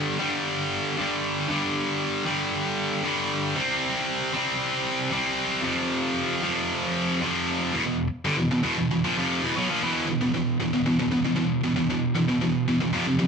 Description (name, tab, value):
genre	metal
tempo	116 BPM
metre	4/4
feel	straight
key	E phrygian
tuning	A4 = 440 Hz
part	heavy high-gain guitar	solo	0.0-13.3 s	E2 to C4	-23 LUFS	equal	distortion
room	moderate studio reverb, RT60 0.8 s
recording	band playing live in one room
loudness	-23 LUFS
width	side -6 dB against mid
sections	0.0-7.7 A section; 7.7-9.8 B section; 9.8-13.3 C section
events	none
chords	0.0 G5; 3.6 C5; 5.7 F5; 7.7 E5